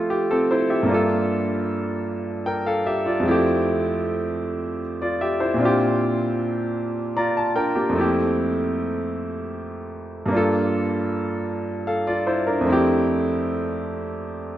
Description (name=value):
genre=R&B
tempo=51 BPM (dotted quarters)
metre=6/8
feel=straight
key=F major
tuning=A4 = 438 Hz
part: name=clear concert grand piano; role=solo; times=0.0-14.6 s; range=F2 to Bb5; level=-20 LUFS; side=equal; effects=digital delay
room=moderate plate reverb, RT60 3.2 s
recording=rough home demo mix, nothing above 7.6 kHz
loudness=-20 LUFS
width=side -12 dB against mid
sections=0.0-14.6 A section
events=grand piano fill 6.8-7.9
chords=0.0 Fmaj9; 0.9 Gm7; 3.2 Fmaj9; 10.3 Gm7; 12.7 Fmaj9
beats=| 0.89 2.06 | 3.24 4.42 | 5.59 6.77 | 7.95 9.12 | 10.30 11.47 | 12.65 13.83